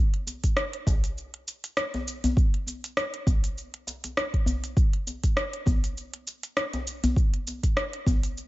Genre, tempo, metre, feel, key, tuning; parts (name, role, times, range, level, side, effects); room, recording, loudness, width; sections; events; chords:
downtempo; 100 BPM; 4/4; swing 56% on 16ths
organic electronic drum kit; drums; 0.1-8.5 s; hi-hat, rim click, shaker; -30 LUFS; equal; overdrive
djembe; percussion; 0.3-8.2 s; -30 LUFS; left 1 dB
electronic kick drum; drums; 0.4-8.2 s; -23 LUFS; equal
little or no reverb; nothing above 7.8 kHz; -24 LUFS; side -18 dB against mid
0.0-8.5 A section